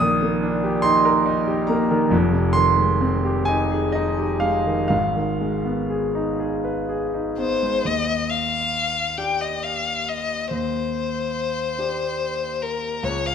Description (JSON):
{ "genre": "classical, impressionist duo for violin and grand piano", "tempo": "40-50 BPM (dotted quarters)", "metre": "6/8", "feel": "rubato", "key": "Eb major", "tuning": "A4 = 440 Hz", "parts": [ { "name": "clear concert grand piano", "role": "accompaniment", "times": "0.0-13.3 s", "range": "F1 to Eb6", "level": "-20 LUFS", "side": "right 1 dB", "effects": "none" }, { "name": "rich violin", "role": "melody", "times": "7.4-13.3 s", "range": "Bb4 to G5", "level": "-23 LUFS", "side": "left 5 dB", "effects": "none" } ], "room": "wet recital hall reverb, RT60 1.4 s", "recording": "none", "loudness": "-20 LUFS", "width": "side -7 dB against mid", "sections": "0.0-7.8 A section; 7.8-13.3 B section", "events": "none", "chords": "0.0 Ebmaj7/Bb; 2.1 Fm9; 4.9 Abm6; 7.8 Ebmaj7" }